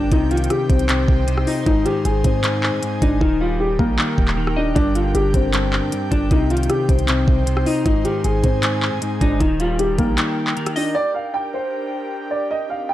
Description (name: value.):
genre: hip hop, trap.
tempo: 155 BPM.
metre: 4/4.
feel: half-time.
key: G phrygian.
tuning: A4 = 440 Hz.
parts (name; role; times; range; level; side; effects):
dark concert grand piano; melody; 0.0-12.9 s; Bb3 to G5; -21 LUFS; left 1 dB; none.
clean electric guitar; accompaniment; 0.0-11.0 s; G2 to Eb5; -24 LUFS; left 2 dB; analog chorus.
airy breathy pad; sustained chords; 0.0-12.9 s; C4 to Ab5; -28 LUFS; right 2 dB; chorus.
warm 808-style bass; bass; 0.0-10.2 s; Eb1 to Ab2; -22 LUFS; right 1 dB; none.
trap drum kit; drums; 0.1-10.9 s; handclaps, hi-hat, kick drum, rim click; -21 LUFS; equal; none.
room: digital ambience.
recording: none.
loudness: -16 LUFS.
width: side -14 dB against mid.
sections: 0.0-11.0 A section; 11.0-12.9 B section.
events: hi-hats muted 3.2-4.8; break 10.2-11.0.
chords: 0.1 Cm; 1.7 Ab; 3.2 Eb; 4.8 Gm; 6.3 Cm; 7.9 Ab; 9.4 Eb; 11.0 Gm.